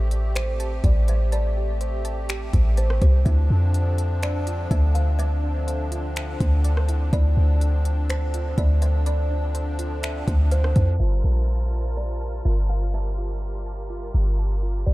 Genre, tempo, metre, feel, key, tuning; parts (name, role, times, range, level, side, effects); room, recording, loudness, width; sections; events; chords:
hip hop, atmospheric cloud-rap; 124 BPM; 4/4; half-time; G dorian; A4 = 440 Hz
musette accordion; sustained chords; 0.0-14.9 s; D3 to A5; -33 LUFS; left 1 dB; sidechain pumping
soft round pluck; arpeggios; 0.0-14.9 s; D4 to A5; -40 LUFS; right 5 dB; chorus, diffuse ambient delay
warm 808-style bass; bass; 0.0-14.9 s; G1 to F2; -21 LUFS; equal
smooth R&B drum kit; drums; 0.1-10.9 s; finger snaps, hi-hat, kick drum, rim click; -26 LUFS; equal; overdrive
kalimba; melody; 0.4-14.9 s; C5 to F5; -34 LUFS; right 1 dB; diffuse ambient delay
digital ambience; low-pass filter; -20 LUFS; side -19 dB against mid
0.0-11.0 A section; 11.0-14.9 B section
filter sweep 11.0-14.9
0.0 Am7; 3.3 Dm9; 11.0 Gm9